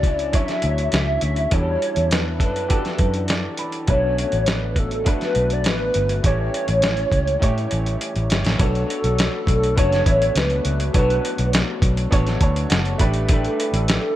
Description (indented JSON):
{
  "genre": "indie pop, bedroom pop",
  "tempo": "102 BPM",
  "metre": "4/4",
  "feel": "straight",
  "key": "B minor",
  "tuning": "A4 = 441 Hz",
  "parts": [
    { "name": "hollow clarinet-like synth lead", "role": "melody", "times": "0.0-14.2 s", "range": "A4 to E5", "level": "-23 LUFS", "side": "equal", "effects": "ensemble chorus, tape echo" },
    { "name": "electric guitar through a small old amp", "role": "accompaniment", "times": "0.0-14.2 s", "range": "A2 to C#5", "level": "-29 LUFS", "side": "left 4 dB", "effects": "analog chorus, warbly pitch drift" },
    { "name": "warm upright piano", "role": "accompaniment", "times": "0.0-14.2 s", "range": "F#3 to B5", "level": "-30 LUFS", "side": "right 3 dB", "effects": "cassette tape" },
    { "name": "vintage muted fingered electric bass", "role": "bass", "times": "0.0-14.0 s", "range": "F#1 to A2", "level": "-22 LUFS", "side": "equal", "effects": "none" },
    { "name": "dusty soul sampler-style drum kit", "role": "drums", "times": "0.0-14.0 s", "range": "hi-hat, kick drum, snare drum", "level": "-21 LUFS", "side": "equal", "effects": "none" }
  ],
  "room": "little or no reverb",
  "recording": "none",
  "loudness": "-18 LUFS",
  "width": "side -13 dB against mid",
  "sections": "0.0-8.6 A section; 8.6-14.2 B section",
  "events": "upright piano fill 3.0-3.9, 12.1-13.3; drum fill 7.4-8.6",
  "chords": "0.0 Dmaj9; 1.5 Em11; 3.9 Bm7; 6.2 A7; 8.6 Bm9; 13.0 A9sus4"
}